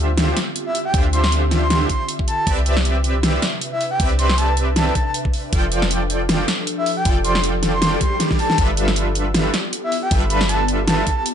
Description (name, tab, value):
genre	future bass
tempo	157 BPM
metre	4/4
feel	swing 56% on 16ths, half-time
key	C major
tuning	A4 = 443 Hz
part	ethereal airy pad	sustained chords	0.0-11.3 s	C3 to E5	-28 LUFS	equal	ensemble chorus, built-in reverb, vintage 12-bit sampler grit, sidechain pumping
part	supersaw stab	riff	0.0-11.0 s	D3 to G5	-24 LUFS	right 1 dB	sidechain pumping, dub echo
part	warm 808-style bass	bass	0.0-11.0 s	F1 to D2	-21 LUFS	equal	sidechain pumping
part	dubstep drum kit	drums	0.2-11.3 s	hi-hat, snare drum	-22 LUFS	equal	overdrive
part	breathy flute-like synth lead	melody	0.7-11.2 s	E5 to C6	-23 LUFS	equal	chorus, sidechain pumping, ping-pong delay
part	electronic kick drum	drums	0.9-11.2 s	none	-20 LUFS	equal	overdrive
part	swell	sound effects	8.0-8.6 s	none	-27 LUFS	equal	none
room	light reverb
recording	nothing above 10.7 kHz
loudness	-16 LUFS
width	side -8 dB against mid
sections	0.0-11.3 A section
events	swell 8.0-8.6; drum fill 8.2-8.6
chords	0.0 Dm11; 2.5 Cmaj9; 5.5 F69; 8.6 G13